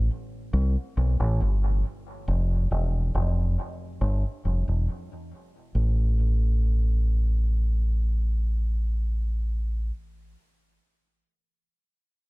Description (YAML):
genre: reggae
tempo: 69 BPM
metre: 4/4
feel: straight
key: unclear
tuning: A4 = 443 Hz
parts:
  - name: deep dub fingered electric bass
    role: solo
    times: 0.0-9.9 s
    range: E1 to C2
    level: -23 LUFS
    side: equal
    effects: dub echo
room: little or no reverb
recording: none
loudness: -23 LUFS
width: side -24 dB against mid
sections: 0.0-5.7 A section; 5.7-9.2 B section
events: none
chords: none